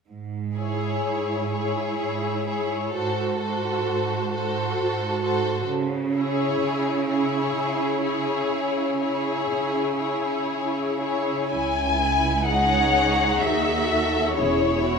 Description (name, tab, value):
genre	classical, slow romantic movement for string orchestra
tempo	55-67 BPM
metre	3/4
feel	rubato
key	C# minor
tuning	A4 = 440 Hz
part	bright studio cello section	bass	0.1-15.0 s	C#2 to C#3	-28 LUFS	right 5 dB	none
part	rich studio violin section	melody	0.6-15.0 s	B#4 to G#5	-26 LUFS	left 5 dB	none
part	clear studio violin section	second line	0.6-15.0 s	C#4 to A4	-27 LUFS	left 2 dB	none
part	warm studio viola section	accompaniment	0.6-15.0 s	E4 to C#5	-29 LUFS	right 3 dB	none
part	rich studio double bass section	bass	11.5-15.0 s	E1 to D#2	-29 LUFS	right 3 dB	none
room	wet scoring stage reverb, RT60 1.8 s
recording	minimal, uncompressed stereo recording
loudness	-21 LUFS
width	side -5 dB against mid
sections	0.1-11.5 A section; 11.5-15.0 B section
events	none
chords	0.1 C#m/G#; 3.0 G#7b9; 5.7 C#m; 14.4 C#m/E